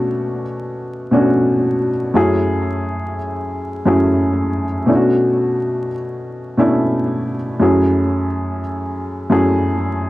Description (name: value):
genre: hip hop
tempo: 88 BPM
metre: 4/4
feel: swing 62% on 16ths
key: F# minor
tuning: A4 = 440 Hz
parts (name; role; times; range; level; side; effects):
- dark upright piano; solo; 0.0-10.1 s; F#2 to A4; -15 LUFS; equal; tape echo
room: wet spring reverb, RT60 1.5 s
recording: vinyl crackle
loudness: -15 LUFS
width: side -17 dB against mid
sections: 0.0-10.1 A section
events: none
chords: 0.0 Bm7; 2.1 F#m7; 4.9 Bm7; 7.6 F#m7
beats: 0.10 0.78 1.46 | 2.15 2.83 3.51 4.19 | 4.87 5.55 6.24 6.92 | 7.60 8.28 8.96 9.65